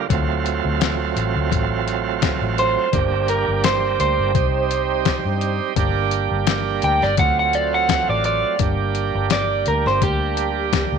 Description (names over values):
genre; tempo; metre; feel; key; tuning
straight-eighth soul blues; 85 BPM; 4/4; swing 55% on 16ths; G minor; A4 = 440 Hz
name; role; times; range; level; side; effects
electric guitar through a small old amp; melody; 0.0-11.0 s; G4 to G5; -20 LUFS; right 2 dB; none
bright tonewheel organ; accompaniment; 0.0-11.0 s; F#3 to G4; -23 LUFS; right 11 dB; slow rotary speaker, overdrive
vintage muted fingered electric bass; bass; 0.1-11.0 s; G1 to G2; -24 LUFS; left 2 dB; none
trip hop sampler-style drum kit; drums; 0.1-10.9 s; hi-hat, kick drum, snare drum; -22 LUFS; left 7 dB; none
room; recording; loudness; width
light reverb, digital ambience; 1960s-style stereo with parts hard left and right; -17 LUFS; side -6 dB against mid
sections
0.0-8.6 A section; 8.6-11.0 B section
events
clean electric guitar solo 0.0-8.6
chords
0.1 D7#9; 2.9 Gm; 4.3 Cm; 5.8 Gm; 7.2 D7#9; 8.6 Gm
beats
| 0.10 0.81 1.52 2.23 | 2.93 3.64 4.35 5.06 | 5.77 6.47 7.18 7.89 | 8.60 9.31 10.02 10.73